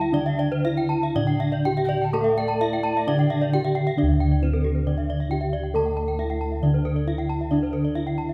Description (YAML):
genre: Balinese gamelan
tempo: 115-136 BPM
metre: 4/4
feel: straight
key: D slendro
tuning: A4 = 440 Hz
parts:
  - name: gamelan-type bronze metallophone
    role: melody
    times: 0.0-8.3 s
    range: C4-45c to A4+25c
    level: -30 LUFS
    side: equal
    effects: none
  - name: mellow alto recorder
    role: second line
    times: 0.0-3.8 s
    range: D5 to A5+26c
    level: -34 LUFS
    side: equal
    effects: none
  - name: gamelan-type bronze metallophone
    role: accompaniment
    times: 0.0-8.3 s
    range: D3 to A3+25c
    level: -30 LUFS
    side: equal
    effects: none
  - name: gamelan-type bronze metallophone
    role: arpeggios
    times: 0.0-8.3 s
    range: G4-35c to A5+25c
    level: -34 LUFS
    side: equal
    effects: none
  - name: gamelan-type bossed gongs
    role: bass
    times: 0.0-8.3 s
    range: D2 to A4+25c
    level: -27 LUFS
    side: equal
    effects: none
  - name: gamelan-type bronze metallophone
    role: arpeggios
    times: 0.3-8.3 s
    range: A4+25c to A5+25c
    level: -34 LUFS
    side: equal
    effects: none
room: moderate scoring stage reverb, RT60 1.7 s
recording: none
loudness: -23 LUFS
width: mono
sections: 0.0-4.0 A section; 4.0-8.3 B section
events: none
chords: none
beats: | 0.14 0.65 1.16 1.65 | 2.14 2.61 3.07 3.53 | 3.98 4.42 4.86 5.30 | 5.74 6.19 6.63 7.07 | 7.51 7.96